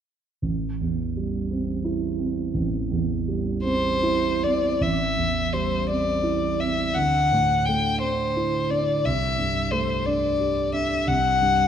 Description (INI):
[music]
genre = classical, impressionist duo for violin and grand piano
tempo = 48-60 BPM (dotted quarters)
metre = 6/8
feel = rubato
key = A dorian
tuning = A4 = 440 Hz
[part]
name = dark concert grand piano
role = accompaniment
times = 0.4-11.7 s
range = A1 to G4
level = -24 LUFS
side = right 2 dB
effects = none
[part]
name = rich violin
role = melody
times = 3.6-11.7 s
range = C5 to G5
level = -23 LUFS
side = left 3 dB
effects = none
[sound]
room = moderate scoring stage reverb, RT60 1.7 s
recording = dark, warm production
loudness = -21 LUFS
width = side -8 dB against mid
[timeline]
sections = 0.4-4.8 A section; 4.8-11.7 B section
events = none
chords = 0.4 Am7; 7.0 D9; 9.1 C69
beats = | 0.44 1.53 | 2.57 3.64 | 4.82 5.89 | 6.96 8.03 | 9.05 10.06 | 11.08